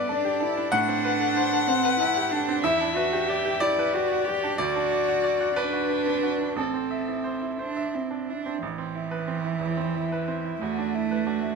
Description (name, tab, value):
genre	neoclassical piano and strings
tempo	58-64 BPM (dotted quarters)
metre	6/8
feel	rubato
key	A dorian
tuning	A4 = 440 Hz
part	dark violin	melody	0.0-11.6 s	E4 to F#5	-27 LUFS	left 9 dB	none
part	warm cello	second line	0.0-11.6 s	E3 to G4	-28 LUFS	right 7 dB	none
part	bright baby grand piano	accompaniment	0.0-11.6 s	A1 to F#5	-28 LUFS	right 3 dB	none
room	light reverb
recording	minimal, uncompressed stereo recording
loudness	-23 LUFS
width	side -4 dB against mid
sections	0.0-8.6 A section; 8.6-11.6 B section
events	none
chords	0.0 Gadd9; 0.7 Amadd9; 2.6 Em7; 4.6 D; 6.6 Am; 8.6 Amadd9; 10.6 E7(no3)